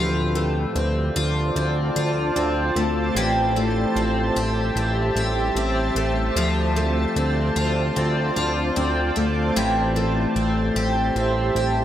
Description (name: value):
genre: dream pop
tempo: 75 BPM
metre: 4/4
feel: straight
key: D minor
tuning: A4 = 441 Hz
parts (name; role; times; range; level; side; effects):
- granular cloud pad; sustained chords; 0.0-11.8 s; F4 to A5; -25 LUFS; right 1 dB; built-in reverb, plate reverb
- picked twelve-string acoustic guitar; arpeggios; 0.0-11.8 s; E3 to G4; -23 LUFS; left 2 dB; wide subtle chorus, analog delay
- fat analog bass; bass; 0.0-11.8 s; A1 to D2; -24 LUFS; equal; none
room: light reverb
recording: dry, gritty hardware recording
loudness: -19 LUFS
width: side -11 dB against mid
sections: 0.0-11.8 A section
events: none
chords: 0.0 Dm7; 3.2 Am7; 6.4 Dm7; 9.6 Am7